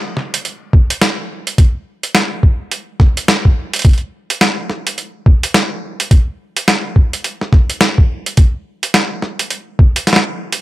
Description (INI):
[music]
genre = glitch hop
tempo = 106 BPM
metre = 4/4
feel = swing 61% on 16ths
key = none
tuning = none
[part]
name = boom bap sampler-style drum kit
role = drums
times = 0.2-10.6 s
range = hi-hat, snare drum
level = -15 LUFS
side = equal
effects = none
[part]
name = electronic kick drum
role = drums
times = 0.7-9.9 s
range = none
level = -9 LUFS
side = equal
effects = none
[sound]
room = little or no reverb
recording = none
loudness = -12 LUFS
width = side -16 dB against mid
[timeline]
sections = 0.0-10.6 A section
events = none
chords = none